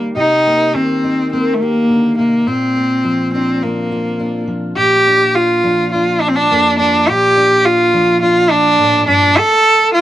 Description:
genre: folk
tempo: 104 BPM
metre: 4/4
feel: straight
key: Bb major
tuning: A4 = 440 Hz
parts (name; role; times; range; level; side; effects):
- fingerpicked steel-string acoustic guitar; accompaniment; 0.0-9.4 s; F2 to G4; -20 LUFS; left 1 dB; cassette tape
- clear cello; melody; 0.2-10.0 s; A3 to A4; -11 LUFS; equal; cassette tape
room: moderate booth ambience, RT60 0.2 s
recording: home recording on cassette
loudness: -11 LUFS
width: side -13 dB against mid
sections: 0.0-4.8 A section; 4.8-10.0 B section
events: build-up 4.8-10.0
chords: 0.2 Cm7; 2.5 Bbadd9; 4.8 Bb; 9.4 N.C.

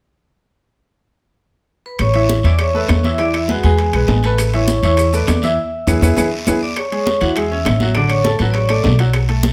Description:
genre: latin, salsa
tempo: 201 BPM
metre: 4/4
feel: straight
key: A major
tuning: A4 = 439 Hz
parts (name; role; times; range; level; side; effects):
- vibraphone with medium hard mallets; melody; 1.9-9.0 s; F#4 to E6; -22 LUFS; equal; none
- upright bass; bass; 2.0-9.5 s; A1 to E2; -19 LUFS; equal; none
- bongos; percussion; 2.0-9.5 s; none; -31 LUFS; equal; none
- claves; percussion; 2.0-9.3 s; none; -32 LUFS; equal; none
- congas; percussion; 2.0-9.5 s; none; -25 LUFS; equal; none
- guiro; percussion; 2.0-9.5 s; none; -33 LUFS; equal; none
- timbales; percussion; 2.0-9.5 s; none; -29 LUFS; equal; none
- bright baby grand piano; accompaniment; 2.1-9.5 s; D3 to E5; -23 LUFS; equal; none
- maracas; percussion; 4.4-6.5 s; none; -33 LUFS; equal; none
room: light reverb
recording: none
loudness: -16 LUFS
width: mono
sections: 0.8-2.0 A section; 2.0-6.8 B section; 6.8-9.5 C section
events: drum fill 5.6-6.8; band accent 5.6-6.8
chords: 0.8 N.C.; 2.0 Aadd9; 3.2 E7; 4.4 Aadd9; 5.6 E7; 6.8 Amaj7; 8.0 Dmaj7/A

